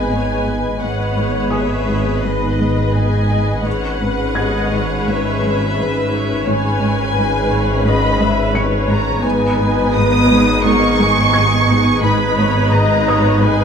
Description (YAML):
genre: cinematic, suspense film score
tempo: 86 BPM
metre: 4/4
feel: straight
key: G# minor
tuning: A4 = 439 Hz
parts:
  - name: muted symphonic violin section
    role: melody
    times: 0.0-13.6 s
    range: D#5 to D#6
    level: -21 LUFS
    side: equal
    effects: none
  - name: muted symphonic violin section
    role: second line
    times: 0.0-13.6 s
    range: G#4 to E5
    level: -22 LUFS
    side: left 2 dB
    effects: none
  - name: muted studio viola section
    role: accompaniment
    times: 0.0-13.6 s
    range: B3 to B4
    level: -22 LUFS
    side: left 1 dB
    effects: none
  - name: evolving wavetable pad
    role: sustained chords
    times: 0.0-13.6 s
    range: B3 to D#6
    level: -24 LUFS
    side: left 2 dB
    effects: chorus, built-in reverb
  - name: muted symphonic cello section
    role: bass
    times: 0.0-13.6 s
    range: G#2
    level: -23 LUFS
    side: right 2 dB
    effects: none
  - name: muted symphonic double bass section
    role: bass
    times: 0.0-13.6 s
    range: G#1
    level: -23 LUFS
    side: right 2 dB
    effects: none
  - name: analog drone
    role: drone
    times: 0.0-13.6 s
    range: G#1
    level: -22 LUFS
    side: equal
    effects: chorus
  - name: felt-muted upright piano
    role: texture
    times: 0.0-13.6 s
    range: G#4 to C#7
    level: -29 LUFS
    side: equal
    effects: none
  - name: muted symphonic cello section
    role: riff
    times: 0.1-13.6 s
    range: G#2 to G#3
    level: -23 LUFS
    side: right 1 dB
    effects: none
  - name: muted symphonic violin section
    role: texture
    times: 9.2-13.6 s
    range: D#6 to G#6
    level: -30 LUFS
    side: right 1 dB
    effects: none
room: wet stone room reverb, RT60 1.0 s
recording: none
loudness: -13 LUFS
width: side -7 dB against mid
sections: 0.0-13.6 A section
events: none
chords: 0.0 G#m; 3.7 C#m7/G#; 9.2 G#m